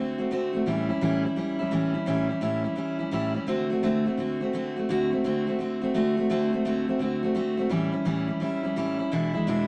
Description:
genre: rock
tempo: 170 BPM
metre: 4/4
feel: swing 65% on 8ths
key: unclear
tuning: A4 = 439 Hz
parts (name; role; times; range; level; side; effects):
- picked steel-string acoustic guitar; solo; 0.0-9.7 s; E2 to F#4; -27 LUFS; equal; none
room: moderate studio ambience, RT60 0.5 s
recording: none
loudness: -27 LUFS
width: mono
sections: 0.0-9.7 A section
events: none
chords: 0.0 D7; 0.7 A7; 3.5 D7; 7.7 A7; 9.1 E7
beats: 0.31 | 0.66 1.01 1.37 1.72 | 2.07 2.42 2.77 3.13 | 3.48 3.83 4.18 4.54 | 4.89 5.24 5.59 5.94 | 6.30 6.65 7.00 7.35 | 7.71 8.06 8.41 8.76 | 9.12 9.47

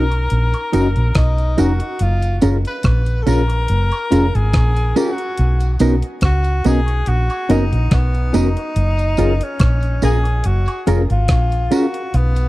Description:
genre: lovers rock reggae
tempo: 71 BPM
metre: 4/4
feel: swing 54% on 16ths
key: F# major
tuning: A4 = 441 Hz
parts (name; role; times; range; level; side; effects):
- warm tenor saxophone; melody; 0.0-12.5 s; B3 to B4; -24 LUFS; left 1 dB; tape echo
- tine electric piano; accompaniment; 0.0-12.0 s; C#4 to A#4; -22 LUFS; left 3 dB; fast tremolo
- mellow electric guitar; stabs; 0.0-11.9 s; B3 to A#4; -20 LUFS; right 5 dB; spring reverb
- fingered electric bass; bass; 0.0-12.5 s; E#1 to C#2; -16 LUFS; equal; none
- clean 12-bit digital drum machine; drums; 0.1-12.5 s; hi-hat, kick drum, rim click; -19 LUFS; equal; none
- woodblock and tambourine; percussion; 0.5-11.9 s; none; -35 LUFS; right 3 dB; tape echo
room: little or no reverb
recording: dry, close 1970s-style studio recording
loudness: -14 LUFS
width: side -18 dB against mid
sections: 0.0-12.5 A section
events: none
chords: 0.0 Bmaj7; 2.0 F#maj7; 5.4 Bmaj7; 8.8 F#maj7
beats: 0.31 1.16 | 2.00 2.85 3.69 4.54 | 5.38 6.22 7.07 7.91 | 8.76 9.60 10.45 11.29 | 12.13

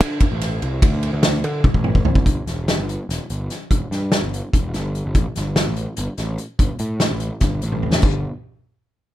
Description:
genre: math rock and midwest emo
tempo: 291 BPM (eighths)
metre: 7/8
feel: straight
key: unclear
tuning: A4 = 440 Hz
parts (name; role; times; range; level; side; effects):
- fuzz picked electric bass; bass; 0.0-8.2 s; E1 to D3; -23 LUFS; equal; overdrive
- loose indie drum kit; drums; 0.0-8.1 s; crash cymbal, hi-hat, kick drum, ride cymbal, snare drum, toms; -19 LUFS; equal; none
room: little or no reverb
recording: rough home demo mix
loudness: -18 LUFS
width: side -14 dB against mid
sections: 0.0-2.3 A section; 2.3-8.0 B section; 8.0-9.1 C section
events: drum fill 1.6-2.3, 7.7-8.0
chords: none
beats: 0.00 0.21 0.41 0.62 | 0.82 1.03 1.24 1.44 1.65 1.85 2.06 | 2.27 2.47 2.68 2.88 3.09 3.30 3.50 | 3.71 3.92 4.12 4.33 4.54 4.74 4.95 | 5.15 5.36 5.57 5.77 5.98 6.19 6.39 | 6.60 6.80 7.01 7.22 7.42 7.63 7.83 | 8.04

